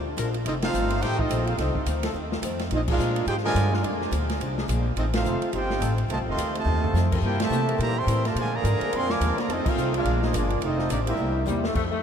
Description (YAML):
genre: jazz, big band swing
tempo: 212 BPM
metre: 4/4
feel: swing 59% on 8ths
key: F major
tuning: A4 = 440 Hz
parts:
  - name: picked acoustic archtop guitar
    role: accompaniment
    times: 0.0-11.9 s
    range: F2 to E4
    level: -34 LUFS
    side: left 4 dB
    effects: none
  - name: upright bass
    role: bass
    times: 0.0-12.0 s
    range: F1 to C3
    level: -26 LUFS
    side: equal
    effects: none
  - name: mellow trombone section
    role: sustained chords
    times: 0.2-11.1 s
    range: F3 to C5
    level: -38 LUFS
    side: left 3 dB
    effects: none
  - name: swinging big-band drum kit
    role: drums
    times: 0.2-11.8 s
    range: crash cymbal, hi-hat, kick drum, ride cymbal, snare drum, toms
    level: -32 LUFS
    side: equal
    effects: none
  - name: clear trumpet section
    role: melody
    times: 0.5-11.5 s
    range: Bb3 to D6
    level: -29 LUFS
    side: right 1 dB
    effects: none
  - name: bright trombone section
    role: second line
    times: 0.5-11.4 s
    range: Bb2 to G4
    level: -29 LUFS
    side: right 3 dB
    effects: none
  - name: mellow saxophone section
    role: melody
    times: 11.5-12.0 s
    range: G3 to A3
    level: -28 LUFS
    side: left 5 dB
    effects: none
room: wet huge ambient reverb, RT60 7.3 s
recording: in a vast, echoing space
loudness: -22 LUFS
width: side -8 dB against mid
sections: 0.0-11.8 A section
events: band accent 0.6, 2.8, 5.1, 7.4, 9.6; drum fill 6.7, 11.5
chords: 0.5 F7; 2.7 Bb7; 5.0 F7; 7.2 C7; 8.4 Bb7; 9.5 F7; 10.1 Bb7; 10.6 F7; 11.2 C7